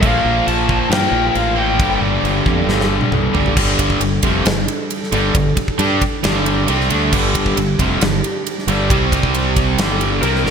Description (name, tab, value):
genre	hard rock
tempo	135 BPM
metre	4/4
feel	straight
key	G minor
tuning	A4 = 437 Hz
part	lead guitar through a small cranked amp	melody	0.0-2.0, 10.2-10.5 s	Bb4 to A5	-20 LUFS	left 4 dB	overdrive, ping-pong delay
part	hollow soft pad	sustained chords	0.0-10.5 s	G3 to D5	-27 LUFS	right 2 dB	chorus
part	cranked stack guitar	riff	0.0-10.5 s	F2 to G4	-21 LUFS	right 12 dB	overdrive, analog chorus
part	distorted electric guitar	riff	0.0-10.5 s	F2 to G4	-22 LUFS	left 10 dB	distortion
part	sludgy distorted guitar	riff	0.0-10.5 s	F2 to G4	-23 LUFS	equal	overdrive
part	modern bright fingered electric bass	bass	0.0-10.5 s	F1 to G2	-21 LUFS	equal	none
part	huge arena drum kit	drums	0.0-10.5 s	crash cymbal, kick drum, ride cymbal, snare drum, toms	-20 LUFS	equal	gated reverb
room	moderate lush hall reverb, RT60 1.8 s, small room ambience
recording	bright 1980s-style digital production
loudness	-14 LUFS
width	side -7 dB against mid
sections	0.0-3.6 A section; 3.6-10.5 B section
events	drum fill 2.7-3.6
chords	0.0 Bb5; 1.8 G5; 8.9 C5; 9.8 G5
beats	| 0.03 0.47 0.92 1.36 | 1.80 2.24 2.69 3.13 | 3.57 4.02 4.46 4.91 | 5.35 5.79 6.24 6.68 | 7.12 7.57 8.01 8.46 | 8.90 9.34 9.79 10.23